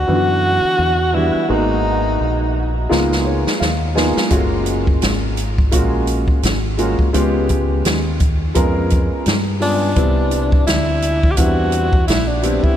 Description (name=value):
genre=hip hop, jazz-hop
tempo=85 BPM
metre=4/4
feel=swing 57% on 16ths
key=unclear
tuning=A4 = 440 Hz
part: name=breathy tenor saxophone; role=melody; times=0.0-2.9, 9.6-12.8 s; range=D4 to G4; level=-20 LUFS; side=equal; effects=none
part: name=deep dub fingered electric bass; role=bass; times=0.0-12.7 s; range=F#1 to G2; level=-20 LUFS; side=equal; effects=none
part: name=dark upright piano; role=accompaniment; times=0.1-12.7 s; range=D3 to G#5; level=-20 LUFS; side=equal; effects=wide subtle chorus
part: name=open jazz drum kit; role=drums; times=2.9-12.8 s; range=hi-hat, kick drum, snare drum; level=-18 LUFS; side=equal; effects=none
room=moderate huge ambient reverb, RT60 8.4 s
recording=dreamy mix soaked in reverb, lossy compression artefacts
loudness=-14 LUFS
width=side -10 dB against mid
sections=0.0-12.8 A section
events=drum fill 2.9-4.3; upright piano fill 2.9-4.3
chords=0.0 Em9; 1.5 G#m9; 2.9 C#13; 4.3 F#maj7; 7.1 C#7#11; 10.0 Cmaj7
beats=0.08 0.78 | 1.49 2.20 2.90 3.61 | 4.31 5.02 5.72 6.43 | 7.14 7.84 8.55 9.25 | 9.96 10.67 11.37 12.08